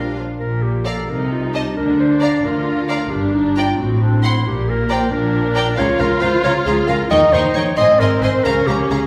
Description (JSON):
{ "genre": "quick classical-period movement for symphony orchestra", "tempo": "89 BPM (dotted quarters)", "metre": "6/8", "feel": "rubato", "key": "unclear", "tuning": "A4 = 440 Hz", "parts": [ { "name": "warm chamber violin section", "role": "melody", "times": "0.0-9.0 s", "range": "F5 to Db6", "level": "-32 LUFS", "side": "equal", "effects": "none" }, { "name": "rich studio violin section", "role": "second line", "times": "0.0-9.0 s", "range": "F4 to C6", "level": "-27 LUFS", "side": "equal", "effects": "none" }, { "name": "warm studio viola section", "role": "accompaniment", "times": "0.0-9.1 s", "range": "Bb3 to F4", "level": "-23 LUFS", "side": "equal", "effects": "none" }, { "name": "rich studio cello section", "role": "bass", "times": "0.0-9.0 s", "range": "G2 to Eb3", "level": "-26 LUFS", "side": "equal", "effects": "none" }, { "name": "warm studio double bass section", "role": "bass", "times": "0.0-9.0 s", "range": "G1 to Eb2", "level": "-24 LUFS", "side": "equal", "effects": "none" }, { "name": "mellow clarinet", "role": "second line", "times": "0.4-9.1 s", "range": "D4 to Eb5", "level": "-21 LUFS", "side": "equal", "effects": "none" } ], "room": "wet recital hall reverb, RT60 1.5 s", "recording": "recorded in a church or concert hall", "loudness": "-17 LUFS", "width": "mono", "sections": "0.4-9.1 A section", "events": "none", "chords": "0.4 N.C.; 1.1 Adim/C (rootless); 1.8 Bb/D; 3.1 G5; 3.8 F#dim/A; 4.5 Gm/Bb; 5.8 Bbm/Db; 7.1 Eb7; 7.8 Ab; 8.4 Bbm/Db" }